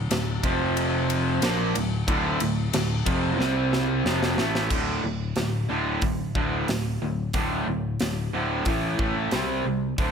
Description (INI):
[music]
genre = hard rock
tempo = 91 BPM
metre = 4/4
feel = straight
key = D minor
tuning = A4 = 442 Hz
[part]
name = cranked stack guitar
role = riff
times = 0.0-10.1 s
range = D2 to C4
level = -28 LUFS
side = right 12 dB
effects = overdrive
[part]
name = distorted electric guitar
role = riff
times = 0.0-10.1 s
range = D2 to C4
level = -28 LUFS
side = left 10 dB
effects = distortion
[part]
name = picked electric bass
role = bass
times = 0.0-10.1 s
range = D1 to C2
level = -30 LUFS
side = equal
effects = none
[part]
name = tight metal drum kit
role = drums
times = 0.1-10.1 s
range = crash cymbal, hi-hat, kick drum, ride cymbal, snare drum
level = -29 LUFS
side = equal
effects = none
[sound]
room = studio ambience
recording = none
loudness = -23 LUFS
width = side -7 dB against mid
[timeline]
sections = 0.0-4.7 A section; 4.7-10.1 B section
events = drum fill 3.4-4.7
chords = 0.4 F5; 1.4 Dm; 3.4 C5; 4.1 Fmaj7; 4.7 D5; 8.7 A5; 9.3 C5